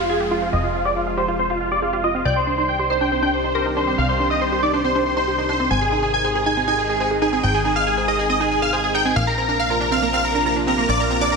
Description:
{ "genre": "trance", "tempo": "139 BPM", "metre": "4/4", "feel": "straight", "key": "C minor", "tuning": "A4 = 438 Hz", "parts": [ { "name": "big supersaw lead", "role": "melody", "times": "0.0-11.4 s", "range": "F4 to Ab5", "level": "-20 LUFS", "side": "equal", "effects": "phaser, low-pass filter, ping-pong delay" }, { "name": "supersaw stab", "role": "second line", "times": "0.0-11.4 s", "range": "F5 to Ab6", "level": "-28 LUFS", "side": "equal", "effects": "ensemble chorus, low-pass filter, ping-pong delay" }, { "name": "supersaw pad", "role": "sustained chords", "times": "0.0-11.4 s", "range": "C3 to Ab4", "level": "-27 LUFS", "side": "equal", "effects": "phaser, low-pass filter" }, { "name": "analog pluck", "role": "arpeggios", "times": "0.0-11.3 s", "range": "Bb3 to C5", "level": "-25 LUFS", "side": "right 3 dB", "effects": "chorus, ping-pong delay" }, { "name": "plucky analog bass", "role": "bass", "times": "0.0-11.4 s", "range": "F1 to C2", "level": "-27 LUFS", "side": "equal", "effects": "none" }, { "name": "downlifter and noise sweep", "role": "sound effects", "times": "0.0-2.3, 11.3-11.4 s", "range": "none", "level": "-35 LUFS", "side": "left 1 dB", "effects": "none" }, { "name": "glassy wavetable pluck", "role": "second line", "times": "0.1-4.1 s", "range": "Ab4 to D5", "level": "-27 LUFS", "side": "equal", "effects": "chorus, ping-pong delay" } ], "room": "moderate lush hall reverb, RT60 2.2 s", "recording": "none", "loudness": "-17 LUFS", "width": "side -4 dB against mid", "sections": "0.0-11.4 A section", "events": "filter sweep on supersaw synth 0.0-11.4; filter sweep on synth pluck 0.0-11.4", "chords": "0.0 Fm; 2.3 Cmadd9; 5.7 Ab; 9.2 Bbadd9", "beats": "0.10 | 0.53 0.96 1.39 1.82 | 2.25 2.69 3.12 3.55 | 3.98 4.41 4.84 5.28 | 5.71 6.14 6.57 7.00 | 7.43 7.87 8.30 8.73 | 9.16 9.59 10.02 10.46 | 10.89 11.32" }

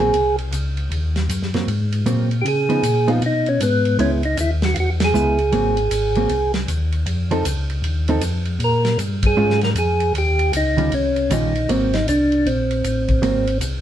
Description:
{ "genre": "soul jazz organ trio", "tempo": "156 BPM", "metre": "4/4", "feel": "swing 64% on 8ths", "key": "Ab mixolydian", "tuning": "A4 = 442 Hz", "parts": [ { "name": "percussive tonewheel organ", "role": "melody", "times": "0.0-13.6 s", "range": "Cb4 to Bb4", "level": "-19 LUFS", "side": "right 1 dB", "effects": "slow rotary speaker" }, { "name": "hollow-body jazz guitar", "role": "accompaniment", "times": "0.0-13.4 s", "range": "Eb3 to A4", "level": "-22 LUFS", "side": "right 2 dB", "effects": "none" }, { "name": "mellow tonewheel organ", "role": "bass", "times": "0.0-13.8 s", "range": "Ab1 to Db3", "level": "-21 LUFS", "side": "left 1 dB", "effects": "chorus vibrato" }, { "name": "warm soul drum kit", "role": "drums", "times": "0.0-13.7 s", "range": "hi-hat, kick drum, ride cymbal, snare drum", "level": "-27 LUFS", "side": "right 1 dB", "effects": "none" } ], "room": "moderate club reverb, RT60 0.7 s", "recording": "heard from further back in the room", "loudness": "-17 LUFS", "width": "side -11 dB against mid", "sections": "0.0-13.8 A section", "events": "band accent 5.0, 9.2", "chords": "0.0 Ab9; 0.9 Ebm; 1.7 Ab9; 2.5 Db9; 4.0 Dbm7; 5.5 Ab9; 7.1 F7; 8.6 Bbm7; 10.1 Eb9; 11.7 Ab9", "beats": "0.14 0.53 | 0.91 1.30 1.68 2.06 | 2.45 2.83 3.22 3.60 | 3.99 4.37 4.76 5.14 | 5.53 5.91 6.30 6.68 | 7.07 7.45 7.83 8.22 | 8.61 8.99 9.38 9.76 | 10.14 10.53 10.92 11.30 | 11.69 12.07 12.46 12.84 | 13.23 13.62" }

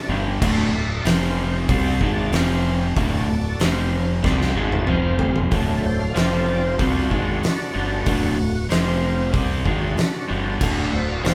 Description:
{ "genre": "blues rock power trio and southern rock", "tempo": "94 BPM", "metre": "4/4", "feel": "straight", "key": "unclear", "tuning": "A4 = 437 Hz", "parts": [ { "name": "overdriven tonewheel organ", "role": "sustained chords", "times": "0.0-11.3 s", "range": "F3 to A5", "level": "-30 LUFS", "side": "equal", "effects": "slow rotary speaker, chorus vibrato" }, { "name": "crunchy overdriven guitar", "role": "riff", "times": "0.1-11.3 s", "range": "D2 to C4", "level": "-26 LUFS", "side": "equal", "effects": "none" }, { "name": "growling fingered electric bass", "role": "bass", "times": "0.1-11.3 s", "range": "D1 to C2", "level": "-27 LUFS", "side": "equal", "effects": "overdrive" }, { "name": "oversized low-tuned drum kit", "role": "drums", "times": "0.4-11.3 s", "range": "crash cymbal, hi-hat, kick drum, snare drum, toms", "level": "-26 LUFS", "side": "equal", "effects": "none" } ], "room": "moderate large studio reverb, RT60 0.9 s", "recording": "band playing live in one room", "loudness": "-21 LUFS", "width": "mono", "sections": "0.0-5.5 A section; 5.5-11.3 B section", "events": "drum fill 4.2-5.5; tonewheel organ solo 5.5-11.3", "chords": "0.0 D; 1.1 F5; 1.7 D; 2.3 F5; 3.0 D; 3.6 F5; 4.2 D; 4.9 F5; 5.5 D; 6.2 F5; 6.8 D; 8.7 F5; 9.3 D", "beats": "| 0.42 1.06 1.70 2.33 | 2.97 3.61 4.24 4.88 | 5.52 6.16 6.79 7.43 | 8.07 8.71 9.34 9.98 | 10.62 11.25" }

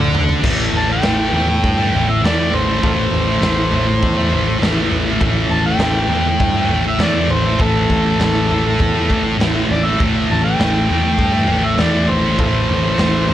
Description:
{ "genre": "garage rock duo or trio", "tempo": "100 BPM", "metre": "4/4", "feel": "straight", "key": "A minor", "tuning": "A4 = 440 Hz", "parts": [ { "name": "thick fuzz guitar", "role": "riff", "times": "0.0-13.3 s", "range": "A2 to D4", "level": "-17 LUFS", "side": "equal", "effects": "distortion" }, { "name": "overdriven fingered electric bass", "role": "bass", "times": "0.0-13.3 s", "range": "A1 to G2", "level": "-21 LUFS", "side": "equal", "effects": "none" }, { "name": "raw garage drum kit", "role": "drums", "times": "0.0-13.3 s", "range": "crash cymbal, kick drum, snare drum, toms", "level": "-20 LUFS", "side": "equal", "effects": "none" }, { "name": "overdriven harmonica", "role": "melody", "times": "0.8-13.3 s", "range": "F4 to A5", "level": "-20 LUFS", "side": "equal", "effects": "none" } ], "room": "light reverb, studio reverb", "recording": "none", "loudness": "-13 LUFS", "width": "side -12 dB against mid", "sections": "0.4-13.3 A section", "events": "drum fill 0.0-0.4", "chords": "0.4 Am", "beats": "| 0.44 1.04 1.63 2.23 | 2.83 3.43 4.03 4.62 | 5.22 5.82 6.42 7.01 | 7.61 8.21 8.81 9.40 | 10.00 10.60 11.20 11.79 | 12.39 12.99" }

